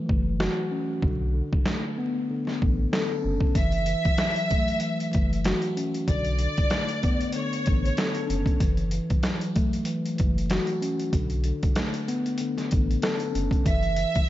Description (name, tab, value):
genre	hip hop, boom-bap hip-hop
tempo	95 BPM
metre	4/4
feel	swing 58% on 16ths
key	F# minor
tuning	A4 = 442 Hz
part	mellow tine electric piano	accompaniment	0.0-14.3 s	D3 to A4	-28 LUFS	left 2 dB	slow stereo tremolo, cassette tape
part	soft dub sub bass	bass	0.1-14.1 s	F#1 to B1	-27 LUFS	equal	none
part	trip hop sampler-style drum kit	drums	0.1-14.3 s	hi-hat, kick drum, snare drum	-26 LUFS	equal	none
part	rich symphonic violin section	melody	3.6-8.1, 13.7-14.3 s	C#5 to E5	-29 LUFS	right 1 dB	diffuse ambient delay
room	light reverb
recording	vinyl crackle, nothing above 7.6 kHz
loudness	-23 LUFS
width	side -14 dB against mid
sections	0.0-14.3 A section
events	break 0.0-3.6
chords	0.0 F#m7; 1.0 Bm9; 3.6 F#m7; 6.1 Bm9; 8.6 F#m7; 11.1 Bm9; 13.7 F#7(no3)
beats	0.39 | 1.02 1.66 2.29 2.92 | 3.55 4.18 4.82 5.45 | 6.08 6.71 7.34 7.97 | 8.60 9.24 9.87 10.50 | 11.13 11.76 12.39 13.03 | 13.66 14.29